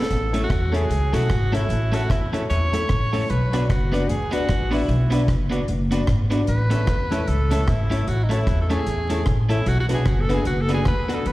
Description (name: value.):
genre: ska.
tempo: 151 BPM.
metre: 4/4.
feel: swing 59% on 8ths.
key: A major.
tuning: A4 = 440 Hz.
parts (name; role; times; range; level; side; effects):
clear tenor saxophone; melody; 0.0-11.3 s; D#4 to C#5; -27 LUFS; right 1 dB; analog delay, slapback echo.
electric guitar at the edge of break-up; accompaniment; 0.0-11.2 s; A3 to B4; -28 LUFS; right 2 dB; analog delay, slapback echo.
upright bass; bass; 0.0-11.3 s; F#1 to E2; -22 LUFS; equal; none.
deep reggae drum kit; drums; 0.0-11.3 s; hi-hat, kick drum, rim click, snare drum; -25 LUFS; equal; none.
dark upright piano; stabs; 0.3-11.2 s; B3 to D5; -28 LUFS; left 4 dB; analog delay, slapback echo.
room: small room ambience.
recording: live gig heard through the venue's PA, recital hall reverb, vinyl crackle.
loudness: -19 LUFS.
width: side -17 dB against mid.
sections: 0.0-11.3 A section.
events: tenor saxophone solo 0.0-11.3.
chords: 0.1 A; 3.3 Bm; 6.5 A; 9.7 Bm.